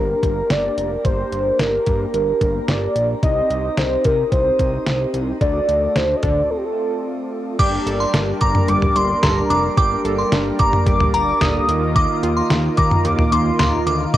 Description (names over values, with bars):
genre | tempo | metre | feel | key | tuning
synth-pop | 110 BPM | 4/4 | straight | G minor | A4 = 440 Hz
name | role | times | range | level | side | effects
warm velvety synth lead | melody | 0.0-14.0 s | G4 to Eb6 | -21 LUFS | equal | chorus, cassette tape, analog delay, shimmer reverb
mellow synth brass | accompaniment | 0.0-14.2 s | A3 to F5 | -25 LUFS | equal | chorus, cassette tape, shimmer reverb
fat analog bass | bass | 0.0-14.2 s | F1 to D3 | -24 LUFS | equal | none
detuned 8-bit digital drum machine | drums | 0.2-14.2 s | crash cymbal, hi-hat, kick drum, snare drum, toms | -20 LUFS | equal | cassette tape
glassy synth bell | second line | 7.6-14.2 s | Bb5 to D6 | -22 LUFS | equal | chorus, phaser, cassette tape, analog delay, shimmer reverb
brassy analog pad | sustained chords | 7.6-14.2 s | Eb3 to Bb4 | -24 LUFS | right 2 dB | chorus, cassette tape, shimmer reverb
analog pluck | arpeggios | 7.6-14.2 s | Eb3 to G5 | -29 LUFS | equal | chorus, cassette tape, analog delay, shimmer reverb
room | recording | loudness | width
moderate spring reverb, RT60 2.5 s | home recording on cassette | -16 LUFS | side -13 dB against mid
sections
0.0-7.6 A section; 7.6-14.2 B section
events
break 6.5-7.6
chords
0.0 Gm; 3.2 Cm; 5.4 D; 6.5 F; 7.6 Gmadd9; 11.7 Ebsus2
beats
0.50 | 1.05 1.59 2.14 2.68 | 3.23 3.77 4.32 4.87 | 5.41 5.96 6.50 7.05 | 7.59 8.14 8.68 9.23 | 9.78 10.32 10.87 11.41 | 11.96 12.50 13.05 13.59 | 14.14